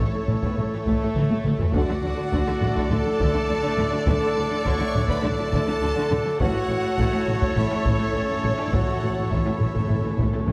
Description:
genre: cinematic, epic orchestral film score.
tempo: 103 BPM.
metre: 4/4.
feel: straight.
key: D major.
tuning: A4 = 440 Hz.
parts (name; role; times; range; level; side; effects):
rich symphonic violin section; melody; 0.0-10.5 s; C#5 to D5; -36 LUFS; equal; none.
rich symphonic violin section; second line; 0.0-10.5 s; A4 to C#6; -38 LUFS; equal; none.
rich symphonic viola section; accompaniment; 0.0-10.5 s; E3 to A4; -35 LUFS; equal; none.
mellow French horn section; sustained chords; 0.0-10.5 s; A3 to C#5; -31 LUFS; equal; none.
mellow trombone section; sustained chords; 0.0-10.5 s; A2 to A3; -36 LUFS; equal; none.
warm woodwind section; sustained chords; 0.0-10.5 s; A3 to F#5; -38 LUFS; equal; none.
mellow trumpet; stabs; 0.0-10.5 s; C#5 to D5; -36 LUFS; equal; none.
clear symphonic double bass section; bass; 0.0-10.5 s; A1 to D2; -32 LUFS; equal; none.
rich symphonic cello section; bass; 0.0-10.5 s; A2 to D3; -33 LUFS; equal; none.
taiko ensemble; drums; 0.3-10.5 s; none; -28 LUFS; equal; none.
timpani; percussion; 1.7-2.6, 6.4-10.5 s; A2 to D3; -33 LUFS; equal; none.
room: moderate scoring stage reverb, RT60 1.9 s.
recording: dark, warm production.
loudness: -23 LUFS.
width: mono.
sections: 0.0-10.5 A section.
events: drum fill 1.2-1.7; timpani fill 6.4-10.5.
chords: 0.0 A; 1.7 D; 6.4 A.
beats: 0.00 0.58 1.16 | 1.74 2.33 2.91 3.49 | 4.08 4.66 5.24 5.82 | 6.40 6.99 7.57 8.15 | 8.73 9.31 9.89 10.47.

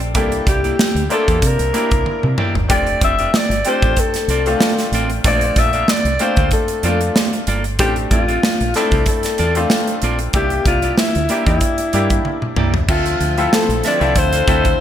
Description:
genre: polished 1980s jazz-funk pop.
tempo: 94 BPM.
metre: 4/4.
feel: swing 54% on 16ths.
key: F major.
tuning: A4 = 441 Hz.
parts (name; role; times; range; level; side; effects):
bright baby grand piano; accompaniment; 0.0-14.8 s; A3 to E5; -23 LUFS; left 1 dB; wide subtle chorus.
clean electric guitar; riff; 0.0-14.7 s; Bb3 to F5; -25 LUFS; right 4 dB; wide subtle chorus.
deep dub fingered electric bass; bass; 0.0-14.7 s; F1 to C3; -20 LUFS; equal; none.
modern studio drum kit; drums; 0.0-14.8 s; crash cymbal, hi-hat, kick drum, snare drum, toms; -18 LUFS; right 1 dB; gated reverb.
growling alto saxophone; melody; 0.2-14.8 s; E4 to E5; -20 LUFS; left 3 dB; none.
lush unison pad; sustained chords; 12.9-14.8 s; D3 to E5; -27 LUFS; right 2 dB; chorus.
room: light reverb, studio reverb.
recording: bright 1980s-style digital production.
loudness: -14 LUFS.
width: side -10 dB against mid.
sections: 0.0-12.9 A section; 12.9-14.8 B section.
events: drum fill 2.1-2.7, 12.3-12.9.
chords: 0.1 C9; 2.7 F6; 5.2 Bbmaj7; 7.8 F6/A; 10.3 C9; 12.9 Dm9.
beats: | 0.15 0.79 1.43 2.06 | 2.70 3.34 3.98 4.61 | 5.25 5.89 6.52 7.16 | 7.80 8.43 9.07 9.71 | 10.34 10.98 11.62 12.25 | 12.89 13.52 14.16 14.80.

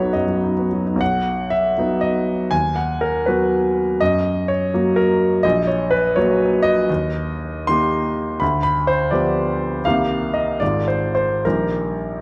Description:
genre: classical, romantic character piece for solo piano.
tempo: 66-86 BPM (dotted quarters).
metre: 6/8.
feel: rubato.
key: B major, Eb major from 6.9 s.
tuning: A4 = 440 Hz.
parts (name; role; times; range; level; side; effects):
clear grand piano; solo; 0.0-12.2 s; Ab1 to C6; -19 LUFS; equal; none.
room: wet recital hall reverb, RT60 1.7 s.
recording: none.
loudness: -19 LUFS.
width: mono.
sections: 0.0-1.0 A section; 1.0-12.2 B section.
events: none.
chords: 0.0 B; 2.5 B/D#; 4.0 F#; 5.4 F#/A#; 6.9 Eb; 8.4 G7/D; 9.8 Cm7; 10.6 Fm7/Ab; 11.4 Eb/Bb.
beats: 0.13 | 1.00 1.78 | 2.51 3.26 | 4.00 4.73 | 5.44 6.17 | 6.89 7.68 | 8.41 9.12 | 9.85 10.60 | 11.44.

